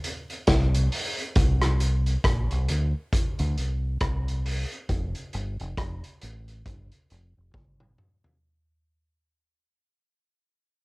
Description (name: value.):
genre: lovers rock reggae.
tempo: 68 BPM.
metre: 4/4.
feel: swing 59% on 16ths.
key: unclear.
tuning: A4 = 440 Hz.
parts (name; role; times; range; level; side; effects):
vintage drum kit; drums; 0.0-8.4 s; hi-hat, kick drum, rim click, snare drum, toms; -26 LUFS; equal; cassette tape.
deep dub fingered electric bass; bass; 0.5-7.9 s; F1 to D2; -25 LUFS; equal; none.
room: light reverb.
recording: home recording on cassette.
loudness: -24 LUFS.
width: side -25 dB against mid.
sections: 0.0-1.4 A section; 1.4-8.4 B section.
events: fade-out 1.4-8.4; drum fill 7.5-8.4.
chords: none.